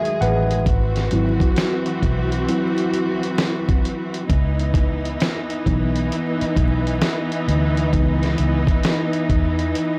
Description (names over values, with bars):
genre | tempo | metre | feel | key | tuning
lo-fi hip hop | 66 BPM | 4/4 | swing 65% on 16ths | C# minor | A4 = 440 Hz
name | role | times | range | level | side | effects
mellow tine electric piano | accompaniment | 0.0-10.0 s | E3 to F#5 | -27 LUFS | equal | cassette tape, low-pass filter
rich studio string section | sustained chords | 0.0-10.0 s | D#3 to G#4 | -26 LUFS | equal | low-pass filter
lo-fi sampler-style drum kit | drums | 0.1-10.0 s | hi-hat, kick drum, snare drum | -24 LUFS | equal | none
vintage muted fingered electric bass | bass | 0.2-9.7 s | G#1 to E2 | -23 LUFS | equal | transformer saturation
room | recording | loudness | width
light reverb | dry, gritty hardware recording, vinyl crackle | -20 LUFS | mono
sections
0.0-10.0 A section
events
tine electric piano solo 0.0-10.0; kick muted 9.7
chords
0.0 Emaj9; 0.7 G#7alt; 4.3 C#m9